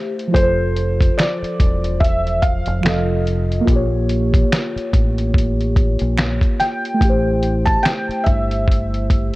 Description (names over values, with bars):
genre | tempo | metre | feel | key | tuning
lo-fi hip hop | 72 BPM | 4/4 | swing 57% on 16ths | F major | A4 = 441 Hz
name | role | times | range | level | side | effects
muted felt-like synth keys | accompaniment | 0.0-9.4 s | F3 to Eb5 | -22 LUFS | equal | chorus
lo-fi sampler-style drum kit | drums | 0.2-9.3 s | finger snaps, hi-hat, kick drum, snare drum | -17 LUFS | equal | none
felt-muted upright piano | melody | 0.3-9.4 s | C5 to A5 | -22 LUFS | equal | none
deep dub fingered electric bass | bass | 0.3-9.3 s | E1 to Bb1 | -20 LUFS | equal | none
finger snap | percussion | 1.2-8.1 s | none | -34 LUFS | right 4 dB | none
room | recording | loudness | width
light reverb, small room ambience | cassette tape | -15 LUFS | side -19 dB against mid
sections
0.0-9.4 A section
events
none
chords
0.3 Fmaj7; 2.8 F7; 3.7 Bbm6; 7.0 Am7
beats
| 0.35 1.18 2.01 2.85 | 3.68 4.51 5.35 6.18 | 7.01 7.85 8.68